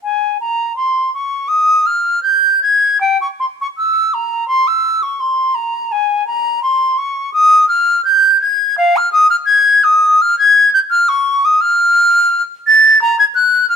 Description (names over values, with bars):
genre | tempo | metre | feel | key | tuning
classical, baroque-style fantasia for unaccompanied flute | 84 BPM | 4/4 | rubato | F minor | A4 = 440 Hz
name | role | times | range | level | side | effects
bright silver concert flute | solo | 0.0-13.8 s | F5 to A6 | -10 LUFS | equal | none
room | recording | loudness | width
moderate stone room reverb, RT60 1.1 s | minimal, uncompressed stereo recording | -10 LUFS | side -7 dB against mid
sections
0.0-13.8 A section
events
none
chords
none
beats
| 0.02 0.77 1.50 2.23 | 3.00 3.75 4.47 5.20 | 5.92 6.63 7.34 8.05 | 8.76 9.47 10.19 10.89 | 11.60 12.30 13.00 13.70